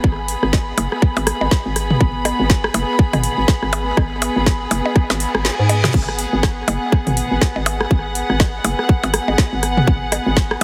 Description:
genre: minimal techno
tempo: 122 BPM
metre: 4/4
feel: swing 59% on 16ths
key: G# minor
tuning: A4 = 441 Hz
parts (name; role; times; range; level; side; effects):
- hollow knocking FM bass; bass; 0.0-10.6 s; F#1 to G#2; -24 LUFS; equal; sidechain pumping
- electronic kick drum; drums; 0.0-10.5 s; none; -16 LUFS; equal; none
- warm chamber string section; texture; 0.0-10.6 s; B3 to B5; -25 LUFS; equal; sidechain pumping
- garage drum kit; drums; 0.3-10.6 s; crash cymbal, hi-hat, snare drum; -25 LUFS; equal; none
- minimal click drum kit; percussion; 0.4-10.6 s; percussion blips, rim click, toms; -24 LUFS; equal; digital delay
- reverse cymbal; sound effects; 5.2-5.9 s; none; -32 LUFS; equal; none
room: light reverb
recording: heavily compressed radio sound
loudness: -18 LUFS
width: mono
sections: 0.0-10.6 A section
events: reverse cymbal 5.2-5.9; kick drops out 5.4-5.9; drum fill 5.4-5.9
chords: 0.0 G#m7

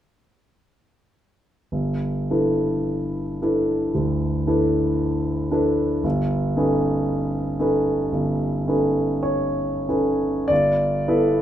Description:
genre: classical, impressionist solo piano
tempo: 45-58 BPM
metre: 4/4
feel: rubato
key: G major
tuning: A4 = 440 Hz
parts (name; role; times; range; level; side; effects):
- clear concert grand piano; solo; 1.7-11.4 s; G1 to D5; -19 LUFS; equal; none
room: moderate large studio reverb, RT60 1.4 s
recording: minimal, uncompressed stereo recording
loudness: -20 LUFS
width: side -11 dB against mid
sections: 1.7-10.5 A section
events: none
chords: 1.7 G69; 6.0 B9/G; 10.5 G69

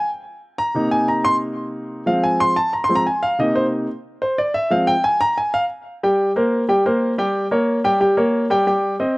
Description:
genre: jazz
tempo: 182 BPM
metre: 4/4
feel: straight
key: C minor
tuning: A4 = 442 Hz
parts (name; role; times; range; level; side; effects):
- warm grand piano; solo; 0.0-9.2 s; C3 to C6; -17 LUFS; equal; none
room: little or no reverb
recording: recorded outdoors, with no room sound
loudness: -17 LUFS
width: side -27 dB against mid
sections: 0.0-6.0 A section; 6.0-9.2 B section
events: grand piano solo 0.0-6.0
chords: 0.0 N.C.; 0.8 Cm7; 2.1 Fm; 3.4 Cm7; 4.7 Fm; 6.0 C5; 7.3 Gdim; 8.7 Cm/G

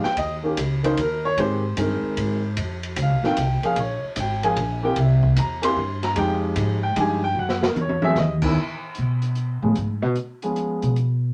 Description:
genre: jazz piano trio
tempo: 150 BPM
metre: 3/4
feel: swing 67% on 8ths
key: F minor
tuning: A4 = 440 Hz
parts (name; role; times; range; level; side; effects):
- warm concert grand piano; melody; 0.0-10.9 s; Eb3 to C6; -25 LUFS; equal; none
- upright bass; bass; 0.0-11.3 s; Ab1 to B2; -26 LUFS; equal; none
- open jazz drum kit; drums; 0.0-11.1 s; crash cymbal, hi-hat, kick drum, ride cymbal, snare drum, toms; -32 LUFS; equal; none
room: moderate studio ambience, RT60 0.5 s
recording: none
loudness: -23 LUFS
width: mono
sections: 0.0-8.6 A section; 8.6-11.3 A section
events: grand piano solo 0.0-8.6; drum fill 7.4-8.2; upright bass solo 8.6-11.3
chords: 0.2 Eb7(no3); 1.4 Abmaj7; 2.6 F; 3.8 Bbm7; 5.0 C7; 6.2 Fm9; 7.4 Gb5; 8.2 Dbm9/Eb; 8.6 N.C.; 9.8 C#7

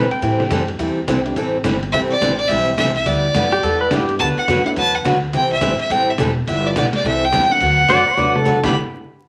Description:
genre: country, western swing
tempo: 211 BPM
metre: 4/4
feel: swing 62% on 8ths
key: G major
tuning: A4 = 436 Hz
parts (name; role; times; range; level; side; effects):
- pedal steel guitar; second line; 0.0-0.7, 3.5-4.1, 7.9-8.7 s; G4 to G5; -22 LUFS; equal; none
- picked steel-string acoustic guitar; accompaniment; 0.0-8.7 s; C3 to B4; -23 LUFS; equal; none
- upright bass; bass; 0.0-8.7 s; E1 to A2; -27 LUFS; equal; none
- lo-fi sampler-style drum kit; drums; 0.1-8.7 s; crash cymbal, hi-hat, kick drum, ride cymbal, snare drum, toms; -27 LUFS; equal; none
- warm upright piano; accompaniment; 0.2-8.7 s; E3 to G4; -29 LUFS; equal; none
- clear fiddle; melody; 1.9-8.7 s; D5 to B5; -20 LUFS; equal; none
room: wet studio reverb, RT60 0.8 s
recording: vinyl crackle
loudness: -17 LUFS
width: mono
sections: 0.0-8.8 A section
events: drum fill 8.2-8.8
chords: 0.0 G6; 4.2 D6; 5.3 C6; 6.5 G6; 7.0 C6; 7.6 D6; 8.6 G6; 8.8 N.C.

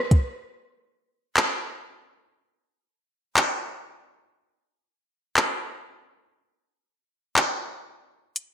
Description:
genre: hip hop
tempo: free time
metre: none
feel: none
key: none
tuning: none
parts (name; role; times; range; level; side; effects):
- smooth R&B drum kit; drums; 0.1-8.5 s; handclaps, hi-hat, kick drum; -21 LUFS; equal; none
room: wet plate reverb, RT60 1.2 s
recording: dreamy mix soaked in reverb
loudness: -23 LUFS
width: side -9 dB against mid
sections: 0.4-8.4 A section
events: kick muted 8.4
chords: none

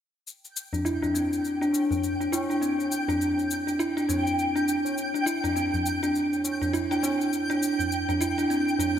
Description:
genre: organic downtempo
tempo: 102 BPM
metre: 4/4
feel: swing 60% on 16ths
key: unclear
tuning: A4 = 440 Hz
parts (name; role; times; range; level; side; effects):
- cabasa; drums; 0.3-8.9 s; none; -36 LUFS; left 5 dB; overdrive
- twinkling granular texture; texture; 1.0-9.0 s; G5; -32 LUFS; equal; built-in reverb, ensemble chorus
- kalimba; arpeggios; 0.7-9.0 s; C4 to E4; -25 LUFS; equal; low-pass filter, digital delay
- tabla; percussion; 0.7-8.9 s; none; -34 LUFS; left 1 dB; none
room: wet lush hall reverb, RT60 2.4 s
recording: bright 1980s-style digital production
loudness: -24 LUFS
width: side -9 dB against mid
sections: 0.3-9.0 A section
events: none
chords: none

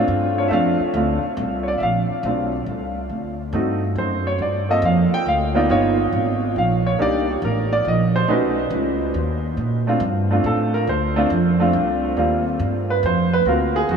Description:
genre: jazz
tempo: 139 BPM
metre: 3/4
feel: swing 68% on 8ths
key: Bb major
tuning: A4 = 440 Hz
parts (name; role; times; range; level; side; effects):
- clear concert grand piano; melody; 0.0-14.0 s; G3 to G5; -19 LUFS; right 1 dB; diffuse ambient delay
- upright bass; bass; 0.0-14.0 s; G1 to Bb2; -22 LUFS; right 1 dB; none
room: wet huge ambient reverb, RT60 8.2 s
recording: dreamy mix soaked in reverb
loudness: -18 LUFS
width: side -6 dB against mid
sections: 0.0-1.8 A section; 1.8-12.2 A section; 12.2-14.0 A section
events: grand piano solo 0.0-12.2, 12.2-14.0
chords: 0.0 Bbmaj9 (rootless); 1.8 Bbsus2; 3.1 D7; 4.4 Gm11; 5.7 Gm7; 7.0 Cm9; 8.3 B9; 9.6 Bbmaj9; 12.2 Eb69; 13.5 D7alt

